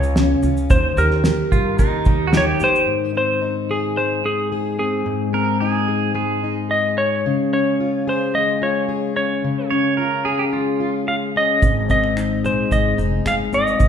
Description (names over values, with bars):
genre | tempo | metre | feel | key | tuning
acoustic pop | 110 BPM | 4/4 | straight | Ab major | A4 = 440 Hz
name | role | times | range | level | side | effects
clean lap steel guitar | melody | 0.0-13.9 s | Ab4 to F5 | -20 LUFS | equal | none
fingerpicked plugged-in steel-string acoustic guitar | accompaniment | 0.0-13.9 s | Ab2 to Bb4 | -21 LUFS | left 3 dB | none
upright bass | bass | 0.0-2.8, 11.6-13.9 s | F1 to G2 | -22 LUFS | right 1 dB | none
cloth-damped thuddy drum kit | drums | 0.0-2.9, 11.6-13.9 s | finger snaps, kick drum, shaker, snare drum | -18 LUFS | right 1 dB | none
pedal steel guitar | second line | 1.5-10.9 s | Eb4 to Db5 | -23 LUFS | right 5 dB | none
room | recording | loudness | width
wet recital hall reverb, RT60 1.5 s | recorded in a church or concert hall | -17 LUFS | side -8 dB against mid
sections
0.0-2.9 A section; 2.9-13.9 B section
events
none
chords
0.0 Db; 0.7 Eb; 2.9 Ab; 7.3 Db; 11.6 Ab